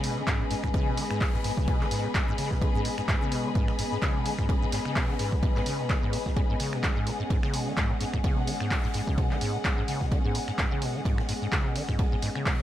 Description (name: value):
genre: acid house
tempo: 128 BPM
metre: 4/4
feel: swing 56% on 16ths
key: G# minor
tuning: A4 = 440 Hz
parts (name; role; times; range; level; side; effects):
- warbly tape-like pad; sustained chords; 0.0-12.6 s; G#3 to B4; -35 LUFS; equal; chorus, built-in reverb, sidechain pumping
- acid bass, saw; riff; 0.0-12.6 s; G#2 to D#3; -32 LUFS; equal; ensemble chorus, dub echo
- open jazz drum kit; drums; 0.0-12.6 s; hi-hat, ride cymbal, snare drum; -43 LUFS; right 2 dB; sidechain pumping on cymbals, high-pass filter on cymbals, studio ambience, sidechain pumping on hats, high-pass filter on hats, high-pass filter on snare, high-pass filter on room
- punchy analog drum machine; drums; 0.0-12.6 s; finger snaps, handclaps, hi-hat; -33 LUFS; equal; studio ambience
- dark studio string section; texture; 0.0-12.6 s; B3 to B5; -34 LUFS; left 3 dB; sidechain pumping
- electronic kick drum; drums; 0.3-12.6 s; none; -27 LUFS; equal; studio ambience
room: light reverb, small room ambience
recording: echo-heavy mix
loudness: -25 LUFS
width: side -12 dB against mid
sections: 0.0-12.6 A section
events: none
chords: 0.0 G#m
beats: 0.27 | 0.74 1.21 1.68 2.15 | 2.62 3.08 3.55 4.02 | 4.49 4.96 5.43 5.90 | 6.37 6.83 7.30 7.77 | 8.24 8.71 9.18 9.65 | 10.12 10.58 11.05 11.52 | 11.99 12.46